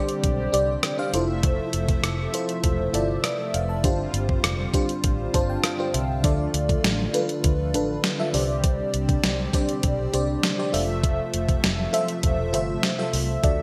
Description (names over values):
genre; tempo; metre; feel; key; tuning
1980s-style pop; 100 BPM; 4/4; straight; unclear; A4 = 440 Hz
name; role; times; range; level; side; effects
FM electric piano with soft pad layer; accompaniment; 0.0-13.6 s; G2 to A5; -28 LUFS; equal; chorus, phaser
brassy analog pad; sustained chords; 0.0-13.6 s; C3 to E5; -34 LUFS; equal; chorus, tremolo
clean 12-bit digital drum machine; drums; 0.1-13.6 s; hi-hat, kick drum, rim click, snare drum; -26 LUFS; equal; gated reverb
vintage muted fingered electric bass; bass; 0.2-13.6 s; E1 to D2; -30 LUFS; equal; none
room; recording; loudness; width
moderate lush hall reverb, RT60 1.7 s; bright 1980s-style digital production; -24 LUFS; mono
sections
0.0-13.6 A section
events
FM electric piano fill 5.0-6.2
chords
0.0 Csus2; 1.1 Fmaj7; 3.8 G7sus4; 6.2 Dm; 8.3 Csus2; 10.7 Fmaj7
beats
0.24 0.84 | 1.44 2.04 2.64 3.24 | 3.84 4.44 5.04 5.64 | 6.24 6.84 7.44 8.04 | 8.64 9.24 9.84 10.44 | 11.04 11.64 12.24 12.84 | 13.44